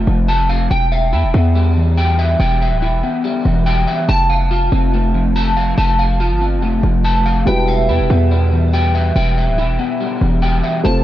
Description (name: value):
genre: hip hop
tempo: 142 BPM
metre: 4/4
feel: half-time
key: E phrygian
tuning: A4 = 441 Hz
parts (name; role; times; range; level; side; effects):
- electric guitar at the edge of break-up; arpeggios; 0.0-11.0 s; E3 to A5; -17 LUFS; left 1 dB; ensemble chorus, tape echo
- hard-hitting 808-style bass; bass; 0.0-11.0 s; D1 to E2; -15 LUFS; equal; none
- dark concert grand piano; accompaniment; 7.5-11.0 s; B2 to C5; -21 LUFS; right 1 dB; tape echo
room: light reverb, small room ambience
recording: echo-heavy mix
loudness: -13 LUFS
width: side -13 dB against mid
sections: 0.0-11.0 A section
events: none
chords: 0.0 F; 0.7 Em; 4.1 F; 7.5 Em